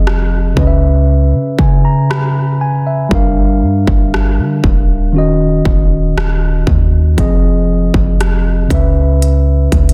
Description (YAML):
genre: contemporary R&B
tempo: 59 BPM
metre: 4/4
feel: straight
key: unclear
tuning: A4 = 440 Hz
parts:
  - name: mellow tine electric piano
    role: accompaniment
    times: 0.0-9.9 s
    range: Db3 to Cb6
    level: -18 LUFS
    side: equal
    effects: none
  - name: soft 808-style bass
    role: bass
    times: 0.0-9.9 s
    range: Eb1 to D3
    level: -16 LUFS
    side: equal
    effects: none
  - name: industrial drum kit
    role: drums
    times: 0.1-9.9 s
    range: hi-hat, kick drum, rim click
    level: -17 LUFS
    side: equal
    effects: distortion, soft clipping on snare
room: little or no reverb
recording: dense, heavily limited modern master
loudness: -12 LUFS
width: mono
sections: 0.0-9.9 A section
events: break 0.0-7.2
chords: 0.0 Fm7; 0.6 Dbm7; 3.1 Gm7; 5.1 Ebm7; 7.2 Fm7; 8.7 Dbm7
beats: 0.06 1.08 2.09 | 3.11 4.13 5.14 6.16 | 7.18 8.20 9.21